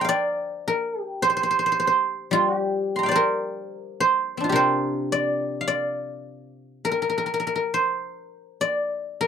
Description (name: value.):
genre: chinese traditional, Chinese solo plucked strings.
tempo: 53 BPM.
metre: 2/4.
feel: rubato.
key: G yu mode.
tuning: A4 = 440 Hz.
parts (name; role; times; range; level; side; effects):
guzheng; solo; 0.0-9.3 s; C3 to C6; -22 LUFS; equal; none.
room: light reverb.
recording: dry, close 1970s-style studio recording.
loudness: -21 LUFS.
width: side -7 dB against mid.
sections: 0.0-9.3 A section.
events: none.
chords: none.